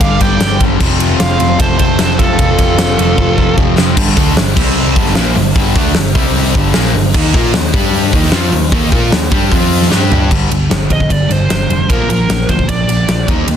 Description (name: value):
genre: hard rock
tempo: 151 BPM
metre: 4/4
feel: straight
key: G minor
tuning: A4 = 440 Hz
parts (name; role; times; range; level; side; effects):
- high-gain lead guitar; melody; 0.0-3.5, 10.9-13.2 s; A4 to G5; -18 LUFS; right 2 dB; distortion, digital delay
- octave-fuzz lead guitar; second line; 0.0-3.5 s; F4 to D5; -22 LUFS; right 3 dB; distortion
- cranked stack guitar; riff; 0.0-13.6 s; F2 to Bb4; -18 LUFS; left 10 dB; overdrive
- sludgy distorted guitar; riff; 0.0-13.6 s; F2 to Bb4; -19 LUFS; right 10 dB; overdrive
- sludgy distorted guitar; riff; 0.0-10.3 s; F2 to Bb4; -19 LUFS; equal; overdrive
- picked electric bass; bass; 0.0-13.6 s; F1 to Bb2; -17 LUFS; equal; none
- big rock drum kit; drums; 0.0-13.6 s; crash cymbal, hi-hat, kick drum, ride cymbal, snare drum, toms; -13 LUFS; equal; none
room: small room ambience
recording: dense, heavily limited modern master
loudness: -10 LUFS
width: side -9 dB against mid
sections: 0.0-4.0 A section; 4.0-10.3 B section; 10.3-13.6 C section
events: drum fill 3.2-4.0, 9.9-10.3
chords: 0.0 G5; 0.8 F; 4.0 G5; 4.6 C5; 5.0 Gm; 6.2 C5; 6.5 Gm; 7.1 Eb5; 7.7 G5; 8.1 Eb5; 9.5 F5; 9.9 G5; 11.9 Bb